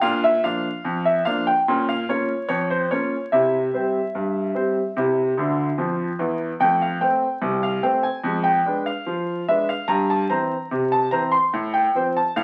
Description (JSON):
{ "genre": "ragtime piano", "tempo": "73 BPM", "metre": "2/4", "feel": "straight", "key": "F major", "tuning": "A4 = 439 Hz", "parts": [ { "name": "clear baby grand piano", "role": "solo", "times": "0.0-12.4 s", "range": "C2 to C6", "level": "-22 LUFS", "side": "equal", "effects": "none" } ], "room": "wet studio reverb, RT60 0.7 s", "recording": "very old 78 rpm record, vinyl crackle", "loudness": "-22 LUFS", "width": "mono", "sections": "0.0-12.4 A section", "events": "grand piano fill 5.4-6.6", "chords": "0.0 Bb; 1.7 Bbm; 3.3 C; 6.6 F; 8.2 Fdim7; 9.9 C/G; 11.5 F/A", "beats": "| 0.02 0.84 | 1.66 2.48 | 3.31 4.13 | 4.95 5.78 | 6.61 7.43 | 8.25 9.07 | 9.88 10.70 | 11.52 12.34" }